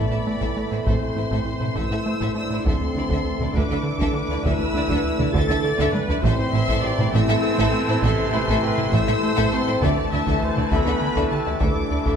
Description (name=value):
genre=cinematic, hybrid orchestral and electronic film score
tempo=67 BPM (dotted quarters)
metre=6/8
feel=straight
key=unclear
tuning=A4 = 436 Hz
part: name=rich symphonic violin section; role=melody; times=0.0-12.2 s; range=A5 to A6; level=-31 LUFS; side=left 3 dB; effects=none
part: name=rich symphonic violin section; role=second line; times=0.0-12.1 s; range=E4 to E5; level=-30 LUFS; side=left 4 dB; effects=none
part: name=clear symphonic viola section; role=accompaniment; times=0.0-12.2 s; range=C4 to E5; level=-30 LUFS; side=equal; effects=none
part: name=analog drone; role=sustained chords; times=0.0-12.2 s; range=A3 to E5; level=-32 LUFS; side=equal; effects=chorus
part: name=bright trombone section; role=sustained chords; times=0.0-12.2 s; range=E3 to A3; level=-30 LUFS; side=right 2 dB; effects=none
part: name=dark French horn section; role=sustained chords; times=0.0-12.2 s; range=C3 to A4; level=-28 LUFS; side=left 3 dB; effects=none
part: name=rubbery square bass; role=riff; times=0.0-12.2 s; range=D2 to A3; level=-27 LUFS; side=right 2 dB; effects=none
part: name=rich symphonic double bass section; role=bass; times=0.0-12.0 s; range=A1 to D2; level=-27 LUFS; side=right 3 dB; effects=none
part: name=warm symphonic cello section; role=bass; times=0.0-12.1 s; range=A2 to D3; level=-28 LUFS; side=right 4 dB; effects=none
part: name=impact and reverse cymbal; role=sound effects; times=0.0-0.9, 12.0-12.2 s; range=none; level=-43 LUFS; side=left 1 dB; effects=none
part: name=warm grand piano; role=texture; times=0.0-12.2 s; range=B3 to E5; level=-36 LUFS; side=left 2 dB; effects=none
part: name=taiko ensemble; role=drums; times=0.4-12.2 s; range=none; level=-28 LUFS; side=equal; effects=none
room=wet scoring stage reverb, RT60 1.6 s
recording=none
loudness=-19 LUFS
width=side -7 dB against mid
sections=0.0-12.2 A section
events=impact 0.0-0.9; drum fill 5.8-6.2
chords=0.0 Am; 2.7 Dsus2; 6.2 Am; 9.8 Dsus2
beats=| 0.87 1.76 | 2.66 3.56 | 4.45 5.35 | 6.24 7.14 | 8.03 8.93 | 9.82 10.72 | 11.62